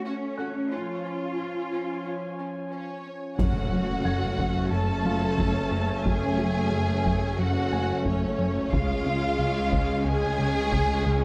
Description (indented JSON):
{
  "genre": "cinematic, hybrid orchestral and electronic film score",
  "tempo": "90 BPM",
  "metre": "4/4",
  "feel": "straight",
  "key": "F# harmonic minor from 3.4 s",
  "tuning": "A4 = 439 Hz",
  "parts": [
    { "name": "warm analog pad", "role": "sustained chords", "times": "0.0-11.2 s", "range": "E#3 to G#5", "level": "-37 LUFS", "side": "equal", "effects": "chorus" },
    { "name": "warm symphonic cello section", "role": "bass", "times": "0.0-11.2 s", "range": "C#2 to E#4", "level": "-36 LUFS", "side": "equal", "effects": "none" },
    { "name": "warm grand piano", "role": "texture", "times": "0.0-11.2 s", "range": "E#4 to G#6", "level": "-42 LUFS", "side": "equal", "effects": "none" },
    { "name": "rich symphonic violin section", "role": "second line", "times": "0.1-11.2 s", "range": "C#4 to A4", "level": "-36 LUFS", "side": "equal", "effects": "none" },
    { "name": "dark symphonic violin section", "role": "melody", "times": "2.7-11.2 s", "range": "C#5 to A5", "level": "-36 LUFS", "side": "equal", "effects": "none" },
    { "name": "clear symphonic viola section", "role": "accompaniment", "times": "3.4-11.2 s", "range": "G#3 to C#4", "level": "-36 LUFS", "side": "equal", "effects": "none" },
    { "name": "clear French horn section", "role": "sustained chords", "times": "3.4-11.2 s", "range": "F#3 to G#4", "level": "-39 LUFS", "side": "equal", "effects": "none" },
    { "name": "clear trombone section", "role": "sustained chords", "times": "3.4-11.2 s", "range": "C#3 to A3", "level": "-37 LUFS", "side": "equal", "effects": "none" },
    { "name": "plucky analog bass", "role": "riff", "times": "3.4-11.2 s", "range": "C#2 to F#3", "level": "-31 LUFS", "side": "equal", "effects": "none" },
    { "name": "clear symphonic double bass section", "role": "bass", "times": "3.4-11.2 s", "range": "F#1 to C#2", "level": "-35 LUFS", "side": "equal", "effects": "none" },
    { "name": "taiko ensemble", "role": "drums", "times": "3.4-11.2 s", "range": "none", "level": "-33 LUFS", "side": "equal", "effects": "none" },
    { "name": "impact", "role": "sound effects", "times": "3.4-6.1 s", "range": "none", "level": "-36 LUFS", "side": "equal", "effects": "none" }
  ],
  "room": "light reverb",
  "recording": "close, detailed microphones",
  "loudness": "-26 LUFS",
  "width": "mono",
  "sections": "0.0-3.4 A section; 3.4-11.2 B section",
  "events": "impact 3.4-6.1",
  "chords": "0.0 F#m/A; 0.7 C#; 3.4 F#m; 8.7 C#",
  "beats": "0.06 | 0.72 1.39 2.06 2.72 | 3.39 4.06 4.72 5.39 | 6.06 6.72 7.39 8.06 | 8.72 9.39 10.06 10.72"
}